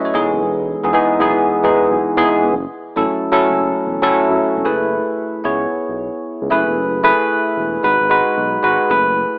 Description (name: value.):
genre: R&B, new jack swing.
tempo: 113 BPM.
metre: 4/4.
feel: swing 65% on 16ths.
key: unclear.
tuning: A4 = 440 Hz.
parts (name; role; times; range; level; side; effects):
barky tine electric piano; accompaniment; 0.0-9.4 s; E3 to E5; -14 LUFS; equal; analog chorus.
smooth synth bass; bass; 0.1-9.2 s; E1 to F#2; -26 LUFS; equal; none.
room: light reverb, digital ambience.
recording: AM radio sound.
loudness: -14 LUFS.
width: side -25 dB against mid.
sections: 0.0-4.7 A section; 4.7-9.4 B section.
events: none.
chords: 0.1 Emaj7; 2.5 F#m7; 4.7 F#m11; 5.4 C#m7; 6.5 F#m11; 7.8 G#m7.